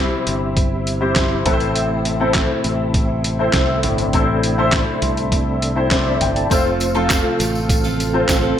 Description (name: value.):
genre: piano-driven pop.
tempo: 101 BPM.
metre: 4/4.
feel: straight.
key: unclear.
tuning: A4 = 440 Hz.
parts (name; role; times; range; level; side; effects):
warm concert grand piano; accompaniment; 0.0-8.6 s; A2 to A5; -19 LUFS; left 2 dB; ensemble chorus.
mellow tonewheel organ; sustained chords; 0.0-8.6 s; C3 to F4; -26 LUFS; right 2 dB; chorus vibrato, slow rotary speaker.
fingered electric bass; bass; 0.0-8.6 s; F1 to C2; -23 LUFS; equal; none.
boom bap sampler-style drum kit; drums; 0.3-8.4 s; handclaps, hi-hat, kick drum, snare drum, toms; -19 LUFS; right 1 dB; gated reverb.
picked steel-string acoustic guitar; riff; 6.5-8.6 s; F3 to A4; -23 LUFS; right 8 dB; none.
tambourine; percussion; 6.5-8.4 s; none; -31 LUFS; left 4 dB; none.
room: light reverb, digital ambience.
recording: bright 1980s-style digital production.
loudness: -15 LUFS.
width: side -10 dB against mid.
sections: 0.0-8.6 A section.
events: none.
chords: 0.0 C; 1.5 Am; 6.5 F.